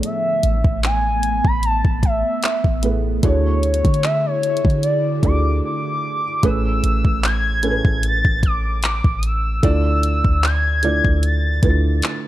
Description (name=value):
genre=contemporary R&B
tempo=75 BPM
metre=4/4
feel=swing 54% on 16ths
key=A major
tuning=A4 = 440 Hz
part: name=felt-muted upright piano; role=accompaniment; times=0.0-12.3 s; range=A2 to D5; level=-25 LUFS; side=right 3 dB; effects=none
part: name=ethereal airy pad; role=sustained chords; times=0.0-6.4 s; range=D3 to G#4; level=-29 LUFS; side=right 2 dB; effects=ensemble chorus, built-in reverb
part: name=smooth R&B drum kit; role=drums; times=0.0-12.2 s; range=handclaps, hi-hat, kick drum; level=-19 LUFS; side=equal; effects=none
part: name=gliding portamento lead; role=melody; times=0.1-12.0 s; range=C#5 to A6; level=-22 LUFS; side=equal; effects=chorus, digital delay
part: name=clean 808-style bass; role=bass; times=0.4-12.0 s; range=A1 to D3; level=-20 LUFS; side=equal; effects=none
room=little or no reverb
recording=dark, warm production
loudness=-16 LUFS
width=side -14 dB against mid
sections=0.0-6.4 A section; 6.4-12.3 B section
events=break 5.6-6.4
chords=0.0 Amaj9; 3.2 Dmaj9#11; 6.4 Amaj9; 9.6 Dmadd9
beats=| 0.03 0.83 1.63 2.43 | 3.23 4.03 4.83 5.63 | 6.43 7.23 8.03 8.83 | 9.63 10.43 11.23 12.03